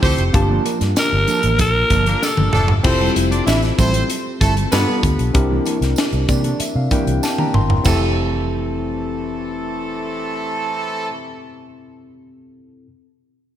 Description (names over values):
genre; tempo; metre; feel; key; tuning
polished 1980s jazz-funk pop; 96 BPM; 4/4; straight; F major; A4 = 439 Hz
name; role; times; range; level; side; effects
clear horn section; second line; 0.0-11.1 s; E3 to E5; -24 LUFS; right 1 dB; none
tine electric piano; accompaniment; 0.0-12.9 s; Bb3 to C6; -23 LUFS; left 2 dB; wide subtle chorus
mellow electric guitar; riff; 0.0-11.4 s; E3 to C5; -27 LUFS; right 4 dB; wide subtle chorus
vintage muted fingered electric bass; bass; 0.0-11.1 s; F1 to C3; -19 LUFS; equal; none
tight funk drum kit; drums; 0.0-8.0 s; crash cymbal, hi-hat, kick drum, snare drum, toms; -20 LUFS; equal; gated reverb
tambourine; percussion; 0.0-8.1 s; none; -34 LUFS; right 6 dB; none
raspy alto saxophone; melody; 1.0-2.7 s; A4 to Bb4; -20 LUFS; equal; none
room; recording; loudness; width
moderate lush hall reverb, RT60 1.8 s, small room ambience; bright 1980s-style digital production; -15 LUFS; side -11 dB against mid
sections
0.0-2.9 A section; 2.9-7.9 B section; 7.9-10.4 C section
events
drum fill 2.2-2.9, 7.2-7.9; tine electric piano fill 6.0-7.9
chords
0.3 Gm9; 2.9 Fmaj9; 4.7 G9; 5.4 C9; 7.9 Fmaj9